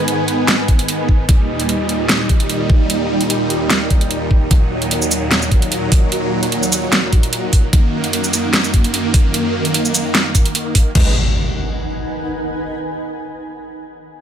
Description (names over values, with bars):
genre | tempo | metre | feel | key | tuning
heavy wobble dubstep | 149 BPM | 4/4 | swing 53% on 16ths, half-time | G# minor | A4 = 441 Hz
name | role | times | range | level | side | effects
supersaw chords | sustained chords | 0.0-11.1 s | D#2 to B4 | -19 LUFS | right 1 dB | phaser, vintage 12-bit sampler grit, sidechain pumping
granular cloud pad | texture | 0.0-12.5 s | D#4 to G#5 | -24 LUFS | right 1 dB | built-in reverb, sidechain pumping
dubstep drum kit | drums | 0.1-11.0 s | crash cymbal, hi-hat, shaker, snare drum | -18 LUFS | right 1 dB | small room ambience
electronic kick drum | drums | 0.7-11.0 s | none | -12 LUFS | equal | small room ambience
impact | sound effects | 11.0-12.6 s | none | -21 LUFS | equal | none
room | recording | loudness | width
little or no reverb | none | -14 LUFS | side -9 dB against mid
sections
0.0-11.0 A section; 11.0-12.6 B section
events
fade-out on ambient pad 0.0-11.0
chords
0.0 G#m; 1.3 D#; 4.5 D#m; 7.7 F#6; 11.0 G#m